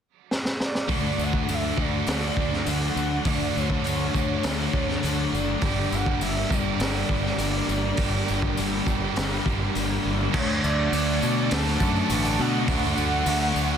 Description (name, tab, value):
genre	rock, shoegaze and dream pop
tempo	102 BPM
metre	4/4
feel	straight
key	D major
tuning	A4 = 440 Hz
part	raw garage drum kit	drums	0.3-13.4 s	crash cymbal, hi-hat, kick drum, snare drum	-28 LUFS	equal	none
part	mellow horn-like synth lead	melody	0.6-13.8 s	C#5 to A5	-32 LUFS	right 4 dB	chorus, slapback echo
part	analog string pad	sustained chords	2.4-13.8 s	D3 to C#6	-37 LUFS	left 1 dB	none
part	biting overdriven guitar	riff	0.9-13.8 s	G2 to G4	-30 LUFS	right 15 dB	reverse reverb
part	distorted electric guitar	riff	0.9-13.8 s	G2 to D4	-31 LUFS	left 2 dB	distortion
part	thick fuzz guitar	riff	0.9-13.8 s	G2 to D4	-29 LUFS	left 10 dB	distortion, lush chorus
part	growling fingered electric bass	bass	0.9-13.8 s	F#1 to B2	-28 LUFS	equal	overdrive
part	tambourine	percussion	0.9-13.8 s	none	-40 LUFS	left 12 dB	none
room	little or no reverb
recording	dense, heavily limited modern master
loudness	-22 LUFS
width	side -8 dB against mid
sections	0.9-10.3 A section; 10.3-13.8 B section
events	drum fill 0.3-0.9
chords	0.0 N.C.; 0.9 Dmaj7; 5.6 Gm; 10.3 Dmaj7